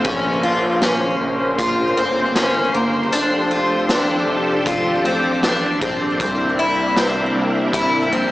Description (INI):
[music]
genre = dream pop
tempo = 78 BPM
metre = 4/4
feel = straight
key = unclear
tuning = A4 = 438 Hz
[part]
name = string machine, violins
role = sustained chords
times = 0.0-8.3 s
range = C3 to C5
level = -21 LUFS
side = equal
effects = ensemble chorus
[part]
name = picked twelve-string acoustic guitar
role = arpeggios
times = 0.0-8.3 s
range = Bb3 to F4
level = -19 LUFS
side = left 1 dB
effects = wide subtle chorus, digital delay
[part]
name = chorused synth bass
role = bass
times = 0.0-8.3 s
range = F1 to C2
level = -27 LUFS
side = equal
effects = transformer saturation
[part]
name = raw garage drum kit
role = drums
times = 0.1-7.9 s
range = crash cymbal, hi-hat, kick drum, snare drum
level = -24 LUFS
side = equal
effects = none
[sound]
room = moderate plate reverb, RT60 2.7 s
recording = blown-out, overdriven recording, overdrive, small speaker sound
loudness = -16 LUFS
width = side -16 dB against mid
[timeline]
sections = 0.0-8.3 A section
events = none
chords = 0.0 Bbmadd9; 3.1 F69; 6.2 C9